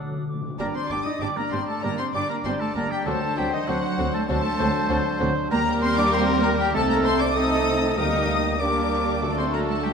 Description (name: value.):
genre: quick classical-period movement for symphony orchestra.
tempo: 97 BPM.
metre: 4/4.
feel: straight.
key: G minor.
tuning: A4 = 440 Hz.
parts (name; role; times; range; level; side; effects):
clear clarinet; second line; 0.0-9.9 s; F#4 to D5; -32 LUFS; left 2 dB; none.
silver concert flute; second line; 0.0-9.9 s; Eb5 to Eb6; -31 LUFS; left 3 dB; none.
warm oboe; second line; 0.0-9.9 s; D4 to Eb5; -32 LUFS; right 1 dB; none.
mellow bassoon; accompaniment; 0.0-9.9 s; F#3 to Bb3; -32 LUFS; right 3 dB; none.
warm studio viola section; accompaniment; 0.0-9.9 s; F#3 to D4; -30 LUFS; right 2 dB; none.
mellow French horn section; sustained chords; 0.0-9.9 s; F#3 to F#4; -31 LUFS; left 1 dB; none.
timpani; percussion; 0.0-3.9, 8.0-9.9 s; D3; -34 LUFS; left 2 dB; none.
warm studio violin section; melody; 0.6-9.9 s; Eb5 to Eb6; -30 LUFS; left 5 dB; none.
warm studio violin section; second line; 0.6-9.9 s; D4 to Bb4; -33 LUFS; left 4 dB; none.
bright trumpet; stabs; 0.6-9.9 s; A4 to D5; -32 LUFS; right 2 dB; none.
dark studio cello section; bass; 0.6-9.9 s; Eb3 to Eb4; -29 LUFS; right 2 dB; none.
rich studio double bass section; bass; 0.6-9.9 s; G1 to Eb2; -31 LUFS; right 2 dB; none.
room: wet concert hall reverb, RT60 1.9 s.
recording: minimal, uncompressed stereo recording.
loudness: -21 LUFS.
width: side -6 dB against mid.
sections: 0.6-9.9 A section.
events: timpani fill 0.0-0.6.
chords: 0.0 D; 0.6 Gm; 3.1 D7; 5.5 Eb; 6.7 Adim/C; 8.0 Gm/D; 9.2 D.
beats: | 0.60 1.22 1.84 2.46 | 3.07 3.69 4.29 4.90 | 5.51 6.13 6.74 7.35 | 7.98 8.60 9.22 9.84.